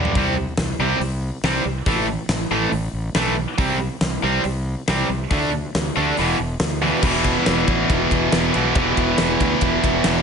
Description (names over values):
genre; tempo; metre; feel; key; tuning
hard rock; 139 BPM; 4/4; straight; unclear; A4 = 440 Hz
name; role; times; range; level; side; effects
tight distorted guitar; riff; 0.0-10.2 s; E2 to D4; -23 LUFS; left 13 dB; distortion
tight distorted guitar; riff; 0.0-10.2 s; E2 to D4; -23 LUFS; right 13 dB; distortion
huge arena drum kit; drums; 0.1-10.1 s; crash cymbal, hi-hat, kick drum, ride cymbal, snare drum, toms; -23 LUFS; equal; none
fuzz fingered electric bass; bass; 0.2-10.2 s; E1 to D2; -25 LUFS; equal; overdrive
heavy high-gain guitar; riff; 7.0-10.2 s; E3 to E4; -26 LUFS; left 1 dB; distortion
room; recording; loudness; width
light reverb, studio reverb; nothing above 10.8 kHz; -18 LUFS; side -6 dB against mid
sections
0.0-7.0 A section; 7.0-10.2 B section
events
drum fill 0.0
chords
0.2 C5; 1.9 A5; 3.6 C5; 5.3 D5; 6.2 E5; 7.0 Em